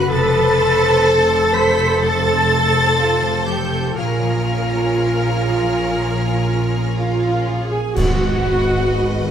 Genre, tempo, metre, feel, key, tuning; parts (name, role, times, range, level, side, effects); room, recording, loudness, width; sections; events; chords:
cinematic, emotional film score for orchestra; 61 BPM; 4/4; rubato; A4 = 440 Hz
rich symphonic violin section; melody; 0.0-9.3 s; E#5 to B6; -24 LUFS; left 1 dB
large flute ensemble; second line; 0.0-9.3 s; E#5 to B5; -27 LUFS; left 2 dB
rich studio violin section; second line; 0.0-9.3 s; F#4 to D#5; -26 LUFS; equal
rich symphonic viola section; accompaniment; 0.0-9.3 s; E#4 to C5; -22 LUFS; right 2 dB
dark French horn section; sustained chords; 0.0-9.3 s; B3 to C5; -22 LUFS; left 1 dB
concert harp; arpeggios; 0.0-9.3 s; F2 to C#4; -26 LUFS; left 8 dB
clear symphonic double bass section; bass; 0.0-9.3 s; F1 to A#1; -22 LUFS; right 2 dB
rich symphonic cello section; bass; 0.0-9.3 s; G#2 to B4; -23 LUFS; right 2 dB
clash cymbals and concert bass drum; percussion; 8.0-9.3 s; -23 LUFS; equal
timpani; percussion; 8.0-9.3 s; G#2; -25 LUFS; right 2 dB
moderate scoring stage reverb, RT60 1.5 s; -15 LUFS; side -8 dB against mid
0.0-8.0 A section; 8.0-9.3 B section
band accent 8.0-8.9
0.1 F; 4.0 A#m7; 8.0 G#m7